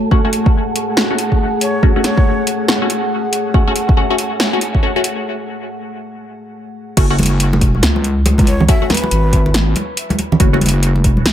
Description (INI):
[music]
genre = deep dubstep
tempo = 140 BPM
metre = 4/4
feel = swing 62% on 16ths, half-time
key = F# minor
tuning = A4 = 440 Hz
[part]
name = dark analog pad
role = sustained chords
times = 0.0-7.0 s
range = A3 to F#5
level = -21 LUFS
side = equal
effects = chorus
[part]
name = wind-like tuned noise texture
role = texture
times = 0.0-5.3 s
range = A3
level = -25 LUFS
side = equal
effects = built-in reverb
[part]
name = filtered dub chord stab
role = stabs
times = 0.1-10.6 s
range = A3 to F#4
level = -21 LUFS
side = left 2 dB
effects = phaser, dub echo
[part]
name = electronic kick drum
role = drums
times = 0.1-11.1 s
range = none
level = -13 LUFS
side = equal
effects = overdrive
[part]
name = deep house drum kit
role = drums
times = 0.3-11.3 s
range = crash cymbal, hi-hat, snare drum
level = -18 LUFS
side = equal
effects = overdrive
[part]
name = breathy shakuhachi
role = melody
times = 1.6-2.5, 8.5-9.5 s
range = B4 to E5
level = -25 LUFS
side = equal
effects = low-pass filter, dub echo
[part]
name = wobble bass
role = bass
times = 7.0-11.3 s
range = F#1 to C#2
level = -14 LUFS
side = equal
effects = chorus
[part]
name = congas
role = percussion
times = 7.2-11.3 s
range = none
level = -19 LUFS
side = right 2 dB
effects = dub echo
[sound]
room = light reverb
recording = echo-heavy mix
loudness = -12 LUFS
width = side -10 dB against mid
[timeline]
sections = 0.0-7.0 A section; 7.0-11.3 B section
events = build-up 0.0-7.0; filter sweep on shakuhachi 0.0-7.0; break 5.3-7.0; drop 7.0-11.3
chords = 0.0 F#m; 7.0 F#5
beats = | 0.11 0.54 0.97 1.40 | 1.83 2.26 2.69 3.11 | 3.54 3.97 4.40 4.83 | 5.26 5.69 6.11 6.54 | 6.97 7.40 7.83 8.26 | 8.69 9.11 9.54 9.97 | 10.40 10.83 11.26